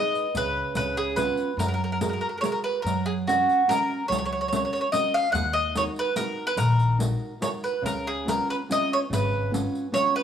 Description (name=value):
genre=italian folk, Italian serenade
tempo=145 BPM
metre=3/4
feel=rubato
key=F# major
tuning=A4 = 439 Hz
part: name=mandolin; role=melody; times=0.0-10.2 s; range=F#4 to F#5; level=-24 LUFS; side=right 1 dB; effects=none
part: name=nylon-string guitar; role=accompaniment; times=0.0-10.2 s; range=C#3 to B4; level=-32 LUFS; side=right 1 dB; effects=none
part: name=riq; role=percussion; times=0.2-10.1 s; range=none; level=-33 LUFS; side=right 1 dB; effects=none
part: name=upright bass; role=bass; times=0.3-9.6 s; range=G#1 to F#2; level=-28 LUFS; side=left 1 dB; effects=none
room=moderate stone room reverb, RT60 1.3 s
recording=band playing live in one room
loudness=-23 LUFS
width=side -8 dB against mid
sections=0.0-2.9 A section; 2.9-10.2 B section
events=none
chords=0.3 Bsus2/C#; 0.8 C#7; 1.6 F#add9; 2.9 F#; 5.3 D#m; 7.8 C#7